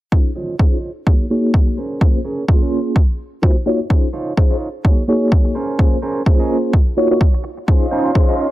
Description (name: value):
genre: filtered disco house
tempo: 127 BPM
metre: 4/4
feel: swing 57% on 16ths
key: unclear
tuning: A4 = 444 Hz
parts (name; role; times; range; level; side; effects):
- mellow reed electric piano; accompaniment; 0.1-8.3 s; Bb3 to C6; -19 LUFS; equal; fast tremolo, phaser, vintage 12-bit sampler grit, sidechain pumping, low-pass filter
- electronic kick drum; drums; 0.1-8.3 s; none; -13 LUFS; equal; overdrive
- semi-hollow electric guitar; riff; 0.4-8.5 s; Db4 to Eb5; -22 LUFS; right 2 dB; sidechain pumping, low-pass filter
- dark studio violin section; sustained chords; 7.7-8.5 s; Db4 to C6; -22 LUFS; right 1 dB; sidechain pumping, low-pass filter
room: little or no reverb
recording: none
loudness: -14 LUFS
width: side -16 dB against mid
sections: 0.1-8.5 A section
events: filter sweep 0.1-8.5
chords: 0.1 Dbmaj9; 1.1 Ab7sus4; 1.8 Bbm9; 3.0 Ebm9; 3.9 Dbmaj9; 4.8 Ab7sus4; 5.6 Bbm9; 6.7 Ebm9; 7.7 Dbmaj9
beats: | 0.12 0.59 1.07 1.54 | 2.01 2.48 2.96 3.43 | 3.90 4.38 4.85 5.32 | 5.79 6.26 6.74 7.21 | 7.68 8.15